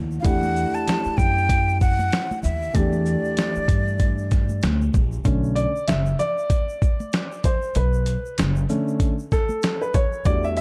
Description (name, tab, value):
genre	hip hop, jazz-hop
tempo	96 BPM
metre	4/4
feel	swing 58% on 16ths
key	B minor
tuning	A4 = 440 Hz
part	dark grand piano	accompaniment	0.0-10.6 s	D3 to E5	-28 LUFS	equal	none
part	upright bass	bass	0.0-10.6 s	F#1 to G2	-26 LUFS	equal	none
part	egg shaker and congas	percussion	0.1-10.6 s	none	-38 LUFS	equal	none
part	breathy jazz flute	melody	0.2-4.6 s	D5 to A5	-28 LUFS	equal	none
part	dusty soul sampler-style drum kit	drums	0.2-10.6 s	hi-hat, kick drum, shaker, snare drum	-24 LUFS	equal	none
room	light reverb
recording	dark, warm production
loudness	-22 LUFS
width	mono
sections	0.0-5.3 A section; 5.3-10.6 B section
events	grand piano solo 5.3-10.6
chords	0.3 Em11; 5.3 Bm9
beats	| 0.25 0.88 1.50 2.13 | 2.75 3.38 4.00 4.63 | 5.25 5.88 6.50 7.13 | 7.75 8.38 9.00 9.63 | 10.25